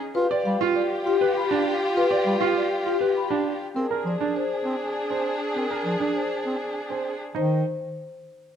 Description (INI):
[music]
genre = classical, minimalist pattern music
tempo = 100 BPM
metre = 3/4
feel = straight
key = unclear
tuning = A4 = 440 Hz
[part]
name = marimba with medium mallets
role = melody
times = 0.0-7.6 s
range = G4 to B5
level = -28 LUFS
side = left 8 dB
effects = none
[part]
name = alto flute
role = second line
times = 0.2-7.2 s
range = G4 to Ab4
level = -30 LUFS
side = right 2 dB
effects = none
[part]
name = clear bass clarinet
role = accompaniment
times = 0.2-7.6 s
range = Eb3 to F4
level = -29 LUFS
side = right 1 dB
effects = none
[part]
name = rich studio violin section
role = sustained chords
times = 0.2-7.2 s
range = D4 to Ab4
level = -30 LUFS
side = left 2 dB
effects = none
[part]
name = clear baby grand piano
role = arpeggios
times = 0.3-7.6 s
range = C4 to D5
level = -27 LUFS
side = right 7 dB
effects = none
[sound]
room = moderate recital hall reverb, RT60 1.3 s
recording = close, detailed microphones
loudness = -22 LUFS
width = side -8 dB against mid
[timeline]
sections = 0.0-7.4 A section; 7.4-8.6 B section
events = none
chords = 0.2 G7; 3.8 Bb7 (rootless); 7.4 Cm/Eb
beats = | 0.15 0.76 1.35 | 1.96 2.56 3.15 | 3.75 4.36 4.96 | 5.55 6.16 6.75 | 7.36